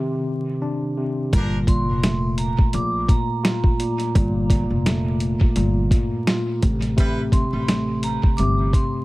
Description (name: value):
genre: hip hop, boom-bap hip-hop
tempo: 85 BPM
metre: 4/4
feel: swing 56% on 16ths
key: G minor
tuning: A4 = 441 Hz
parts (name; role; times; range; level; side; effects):
- tine electric piano; accompaniment; 0.0-9.0 s; Bb2 to F4; -24 LUFS; left 1 dB; slow stereo tremolo, cassette tape
- warm horn section; stabs; 1.3-1.6, 7.0-7.2 s; F3 to B4; -36 LUFS; right 1 dB; dub echo
- upright bass; bass; 1.3-8.7 s; F1 to Bb1; -23 LUFS; equal; none
- dusty soul sampler-style drum kit; drums; 1.3-8.9 s; hi-hat, kick drum, snare drum; -19 LUFS; equal; none
- vibraphone with hard mallets; melody; 1.7-9.0 s; Bb5 to D6; -30 LUFS; right 2 dB; dub echo
room: little or no reverb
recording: echo-heavy mix, vinyl crackle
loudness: -18 LUFS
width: side -20 dB against mid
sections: 0.0-9.0 A section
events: break 0.0-1.3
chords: 0.0 Cmadd9; 1.3 Gm9; 6.6 Am7